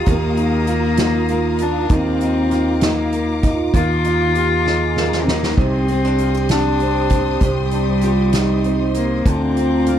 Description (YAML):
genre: six-eight pop ballad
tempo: 65 BPM (dotted quarters)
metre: 6/8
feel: straight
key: Eb major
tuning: A4 = 444 Hz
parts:
  - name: warm cello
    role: melody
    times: 0.0-10.0 s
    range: G3 to F4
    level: -20 LUFS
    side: left 3 dB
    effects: none
  - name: mellow French horn section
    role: second line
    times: 0.0-10.0 s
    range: Eb4 to Ab4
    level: -25 LUFS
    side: right 10 dB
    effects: tape echo
  - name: flamenco guitar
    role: accompaniment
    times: 0.0-10.0 s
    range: C3 to G4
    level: -24 LUFS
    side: equal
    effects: double-tracked left and right
  - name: dark studio string section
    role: sustained chords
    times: 0.0-10.0 s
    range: F4 to Eb6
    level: -28 LUFS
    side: left 1 dB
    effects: none
  - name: fretless electric bass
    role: bass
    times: 0.0-10.0 s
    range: C2 to Eb2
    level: -21 LUFS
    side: equal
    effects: none
  - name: soft-mallet drum kit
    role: drums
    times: 0.1-10.0 s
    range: crash cymbal, hi-hat, kick drum, snare drum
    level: -21 LUFS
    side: right 1 dB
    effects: none
room: little or no reverb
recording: none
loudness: -15 LUFS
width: side -10 dB against mid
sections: 0.0-10.0 A section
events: drum fill 4.7-5.6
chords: 0.0 Ebsus2; 5.6 Cmadd9; 9.3 Bbadd9/D